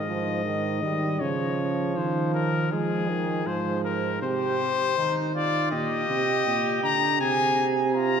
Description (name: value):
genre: classical, imitative canzona for brass ensemble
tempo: 80 BPM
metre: 4/4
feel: straight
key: F minor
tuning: A4 = 440 Hz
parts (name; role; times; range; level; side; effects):
- warm trumpet; melody; 0.0-8.2 s; Ab4 to Bb5; -26 LUFS; left 6 dB; none
- warm trombone; accompaniment; 0.0-4.2 s; Eb3 to Ab3; -31 LUFS; right 3 dB; none
- warm tuba; bass; 0.0-8.2 s; Ab2 to F3; -27 LUFS; right 3 dB; none
- warm flugelhorn; second line; 4.2-8.2 s; Eb4 to Ab4; -29 LUFS; right 5 dB; none
room: wet church reverb, RT60 3.5 s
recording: none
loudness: -23 LUFS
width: side -7 dB against mid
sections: 0.0-8.2 A section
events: none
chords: 0.0 Ab5; 1.2 Bbm/Db; 2.7 Fm; 4.2 Cm; 5.7 Eb/Bb; 7.2 Fm/C